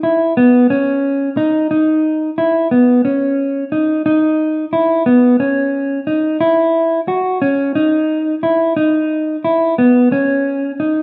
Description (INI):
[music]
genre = progressive instrumental, progressive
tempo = 178 BPM (eighths)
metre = 7/8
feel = straight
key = unclear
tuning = A4 = 440 Hz
[part]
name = mellow electric guitar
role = solo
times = 0.0-11.0 s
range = B3 to F#4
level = -15 LUFS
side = equal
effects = spring reverb
[sound]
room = wet studio reverb, RT60 0.5 s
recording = band playing live in one room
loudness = -15 LUFS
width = mono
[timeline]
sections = 0.0-11.0 A section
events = none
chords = none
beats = 0.03 0.37 0.70 1.04 1.37 | 1.71 2.04 2.38 2.71 3.05 3.38 3.72 | 4.05 4.39 4.73 5.06 5.40 5.74 6.07 | 6.41 6.75 7.08 7.42 7.76 8.09 8.43 | 8.77 9.11 9.44 9.78 10.12 10.45 10.79